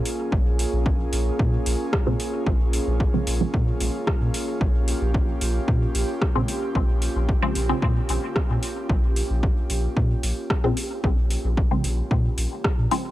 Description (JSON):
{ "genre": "dub techno", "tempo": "112 BPM", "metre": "4/4", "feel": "straight", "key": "Bb dorian", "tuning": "A4 = 441 Hz", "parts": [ { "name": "airy breathy pad", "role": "sustained chords", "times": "0.0-13.1 s", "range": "Bb3 to Ab4", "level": "-29 LUFS", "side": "right 1 dB", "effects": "chorus, sidechain pumping" }, { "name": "deep house drum kit", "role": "drums", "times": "0.1-13.0 s", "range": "hi-hat, rim click", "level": "-30 LUFS", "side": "equal", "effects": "overdrive" }, { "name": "soft dub sub bass", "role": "bass", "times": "0.3-12.9 s", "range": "Bb1 to Bb2", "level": "-24 LUFS", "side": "equal", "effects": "sidechain pumping" }, { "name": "electronic kick drum", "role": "drums", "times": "0.3-12.8 s", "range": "none", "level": "-23 LUFS", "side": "equal", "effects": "none" }, { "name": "filtered dub chord stab", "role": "stabs", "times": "2.1-13.1 s", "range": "Db3 to C4", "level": "-28 LUFS", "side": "equal", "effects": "phaser, sidechain pumping, dub echo" } ], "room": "digital ambience", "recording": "dry, gritty hardware recording, transformer saturation, cassette tape", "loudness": "-21 LUFS", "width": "side -15 dB against mid", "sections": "0.0-13.1 A section", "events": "filter sweep on synth stab 0.0-13.1", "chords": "0.0 Bbm7", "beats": "| 0.32 0.86 1.40 1.93 | 2.47 3.00 3.54 4.07 | 4.61 5.14 5.68 6.22 | 6.75 7.29 7.82 8.36 | 8.89 9.43 9.97 10.50 | 11.04 11.57 12.11 12.64" }